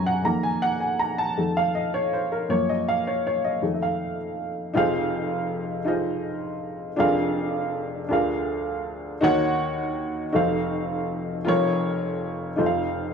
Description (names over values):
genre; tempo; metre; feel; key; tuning
gospel; 54 BPM (dotted quarters); 6/8; straight; unclear; A4 = 439 Hz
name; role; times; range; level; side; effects
warm upright piano; solo; 0.0-13.1 s; F1 to Db6; -22 LUFS; equal; none
room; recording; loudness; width
moderate studio reverb, RT60 0.7 s; band playing live in one room; -22 LUFS; side -6 dB against mid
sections
0.0-4.7 A section; 4.7-13.1 B section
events
upright piano solo 0.0-4.7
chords
0.2 F7sus4; 1.4 F7; 2.5 Gbmaj7; 3.6 F7; 4.7 Fm7; 7.0 Bb7/F; 8.1 Bb7/D; 9.2 Ebm7; 10.3 F7b9; 11.5 Bbm/F; 12.6 F7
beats
| 0.25 1.37 | 2.50 3.62 | 4.75 5.87 | 6.99 8.11 | 9.23 10.35 | 11.46 12.58